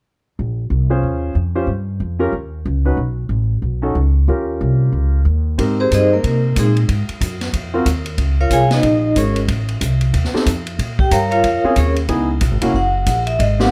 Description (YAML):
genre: jazz, small-group swing and bop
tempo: 184 BPM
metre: 4/4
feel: swing 62% on 8ths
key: Ab major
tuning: A4 = 436 Hz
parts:
  - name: upright bass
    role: bass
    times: 0.4-13.7 s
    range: Fb1 to C3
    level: -20 LUFS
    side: equal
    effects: none
  - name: clear concert grand piano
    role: accompaniment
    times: 0.9-7.8, 10.3-13.7 s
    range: Bb3 to C5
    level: -23 LUFS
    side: equal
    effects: none
  - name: swinging big-band drum kit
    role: drums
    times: 5.6-13.7 s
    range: hi-hat, kick drum, ride cymbal, snare drum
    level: -25 LUFS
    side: equal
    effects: none
  - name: vibraphone with medium hard mallets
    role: melody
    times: 5.8-13.7 s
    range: Ab3 to Bb5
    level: -19 LUFS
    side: equal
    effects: none
room: little or no reverb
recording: none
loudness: -17 LUFS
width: mono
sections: 0.4-5.6 A section; 5.6-13.7 B section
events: none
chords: 0.4 Bbm9; 1.7 Eb7; 3.0 B7(no3); 4.3 Eb7; 5.6 Abmaj7; 6.9 Ab7(no3); 8.2 Db6; 9.5 F7; 10.8 Bbm7; 12.1 Dbm7; 12.7 Gb